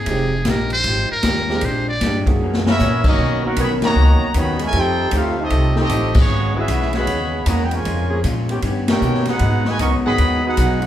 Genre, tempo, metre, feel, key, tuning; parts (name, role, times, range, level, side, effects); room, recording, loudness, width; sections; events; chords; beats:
jazz, big band swing; 154 BPM; 4/4; swing 64% on 8ths; B major from 3.2 s; A4 = 440 Hz
trumpet with metal mute; melody; 0.0-2.2 s; G#4 to D5; -21 LUFS; equal
vintage hollow-body jazz guitar; accompaniment; 0.1-10.9 s; Gb2 to G4; -26 LUFS; left 2 dB
warm grand piano; accompaniment; 0.1-2.8 s; Ab3 to Ab4; -26 LUFS; right 2 dB
upright bass; bass; 0.1-10.9 s; F1 to B2; -20 LUFS; equal
swinging big-band drum kit; drums; 0.1-10.9 s; crash cymbal, hi-hat, kick drum, ride cymbal, snare drum; -22 LUFS; left 1 dB
clear trumpet section; melody; 2.7-10.9 s; B3 to C#6; -22 LUFS; equal
clear trombone section; second line; 2.7-10.9 s; B2 to G4; -24 LUFS; right 2 dB
clear trombone section; sustained chords; 3.4-10.2 s; D#3 to A#4; -27 LUFS; left 1 dB
wet large studio reverb, RT60 0.9 s; band playing live in one room; -15 LUFS; side -11 dB against mid
0.0-3.2 A section; 3.2-10.9 B section
muted trumpet solo 0.0-3.2; drum fill 2.4-2.8; band accent 3.8, 6.1, 8.8
0.1 Fm9; 1.6 Bb6; 2.4 Gb7; 3.2 Bmaj9; 4.7 F9; 6.3 E69; 7.9 A#m7; 8.6 D#7b13; 9.4 G#m7
| 0.08 0.47 0.86 1.25 | 1.64 2.02 2.41 2.80 | 3.19 3.58 3.97 4.36 | 4.74 5.13 5.52 5.91 | 6.30 6.69 7.08 7.47 | 7.86 8.25 8.64 9.03 | 9.42 9.80 10.19 10.58